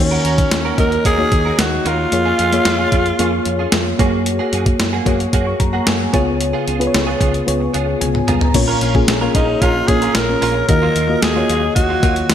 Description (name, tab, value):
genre	1980s-style pop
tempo	112 BPM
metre	4/4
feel	straight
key	Eb minor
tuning	A4 = 441 Hz
part	raspy alto saxophone	melody	0.0-4.0, 9.4-12.3 s	Db4 to Bb4	-18 LUFS	equal	none
part	mellow FM electric piano	accompaniment	0.0-12.3 s	Bb2 to Db6	-19 LUFS	left 2 dB	chorus
part	direct-recorded clean electric guitar	riff	0.0-12.2 s	Gb3 to Bb4	-25 LUFS	right 7 dB	ensemble chorus
part	fingered electric bass	bass	0.0-12.3 s	Bb1 to Gb2	-22 LUFS	equal	none
part	clean 12-bit digital drum machine	drums	0.2-12.3 s	crash cymbal, hi-hat, kick drum, snare drum, toms	-18 LUFS	equal	gated reverb
room	moderate lush hall reverb, RT60 1.9 s, digital ambience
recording	bright 1980s-style digital production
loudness	-13 LUFS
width	side -9 dB against mid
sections	0.0-8.5 A section; 8.5-12.3 B section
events	FM electric piano fill 7.7-8.5; drum fill 8.0-8.5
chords	0.0 Ebm7; 2.1 Bbm7/F; 4.0 Gbadd9; 6.1 Db7; 8.5 Bbm; 10.7 Ebmadd9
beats	0.51 1.05 1.58 | 2.12 2.66 3.19 3.73 | 4.26 4.80 5.33 5.87 | 6.41 6.94 7.48 8.01 | 8.55 9.09 9.62 10.16 | 10.69 11.23 11.76 12.30